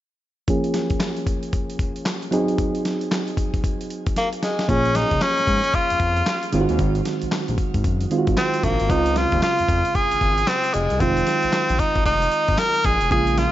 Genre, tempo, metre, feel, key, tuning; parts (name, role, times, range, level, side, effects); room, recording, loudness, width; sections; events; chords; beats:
R&B, new jack swing; 114 BPM; 4/4; swing 62% on 16ths; Bb minor; A4 = 435 Hz
soft electric-piano-like synth keys; accompaniment; 0.5-13.5 s; Db3 to Ab4; -24 LUFS; right 3 dB; chorus, low-pass filter, shimmer reverb
dusty soul sampler-style drum kit; drums; 0.5-13.5 s; handclaps, hi-hat, kick drum, snare drum; -25 LUFS; left 1 dB
edgy tenor saxophone; melody; 4.2-13.5 s; Ab3 to Bb4; -21 LUFS; equal; ping-pong delay, shimmer reverb
smooth synth bass; bass; 4.7-13.5 s; F1 to Ab2; -24 LUFS; left 1 dB
light reverb; nothing above 7.6 kHz; -18 LUFS; side -13 dB against mid
0.5-4.7 A section; 4.7-13.5 B section
filter sweep on synth keys 0.5-4.7; drum fill 4.2-4.7
0.5 Bbm7; 2.3 Ab7; 4.7 Bbm7; 6.5 Ab7; 8.9 Dbmaj7; 11.0 Fm7
| 0.48 1.00 1.53 2.06 | 2.58 3.11 3.64 4.16 | 4.69 5.21 5.74 6.27 | 6.79 7.32 7.85 8.37 | 8.90 9.43 9.95 10.48 | 11.00 11.53 12.06 12.58 | 13.11